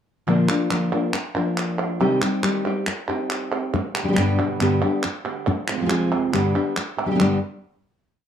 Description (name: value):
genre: flamenco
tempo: 139 BPM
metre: 4/4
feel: straight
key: G phrygian dominant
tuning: A4 = 440 Hz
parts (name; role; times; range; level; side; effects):
- nylon-string guitar; accompaniment; 0.3-7.4 s; G2 to Bb4; -21 LUFS; left 2 dB; none
- flamenco guitar; stabs; 0.3-7.4 s; F2 to G4; -28 LUFS; right 8 dB; none
- palmas hand claps; percussion; 0.3-7.3 s; none; -27 LUFS; right 2 dB; none
room: moderate studio reverb, RT60 0.6 s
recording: dark, warm production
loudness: -20 LUFS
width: side -9 dB against mid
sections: 0.3-7.2 groove; 7.2-8.3 final chord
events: none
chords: 0.3 Bb; 2.0 Cm; 3.7 G; 5.5 Fm; 6.3 G